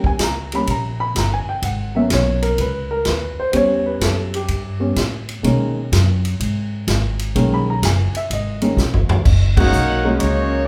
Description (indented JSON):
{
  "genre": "jazz, big band swing",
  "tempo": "126 BPM",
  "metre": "4/4",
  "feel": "swing 67% on 8ths",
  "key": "B major",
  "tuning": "A4 = 438 Hz",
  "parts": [
    { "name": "warm baby grand piano", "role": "accompaniment", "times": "0.0-10.7 s", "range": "D#3 to B5", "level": "-22 LUFS", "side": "equal", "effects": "none" },
    { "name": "upright bass", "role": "bass", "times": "0.0-10.7 s", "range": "D#1 to B2", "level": "-22 LUFS", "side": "equal", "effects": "none" },
    { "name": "swinging big-band drum kit", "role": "drums", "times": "0.0-10.4 s", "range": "crash cymbal, hi-hat, kick drum, ride cymbal, snare drum, toms", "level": "-24 LUFS", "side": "equal", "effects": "none" },
    { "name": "bright trumpet section", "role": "melody", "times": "9.6-10.7 s", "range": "A#3 to F#5", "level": "-24 LUFS", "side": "equal", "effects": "none" },
    { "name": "clear trombone section", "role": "second line", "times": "9.6-10.7 s", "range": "F#3 to F#4", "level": "-24 LUFS", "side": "equal", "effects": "none" }
  ],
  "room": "wet large studio reverb, RT60 0.8 s",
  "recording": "band playing live in one room",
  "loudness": "-18 LUFS",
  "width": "mono",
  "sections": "0.0-9.3 A section; 9.3-10.7 B section",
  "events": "grand piano solo 0.0-9.3; drum fill 8.8-9.3; band accent 9.5",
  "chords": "0.0 D#7 (rootless); 1.6 G#m11; 3.5 A9; 5.4 Bmaj13",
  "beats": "0.20 0.68 1.15 | 1.63 2.11 2.58 3.06 | 3.54 4.01 4.49 4.97 | 5.44 5.92 6.40 6.87 | 7.35 7.83 8.30 8.78 | 9.26 9.73 10.21"
}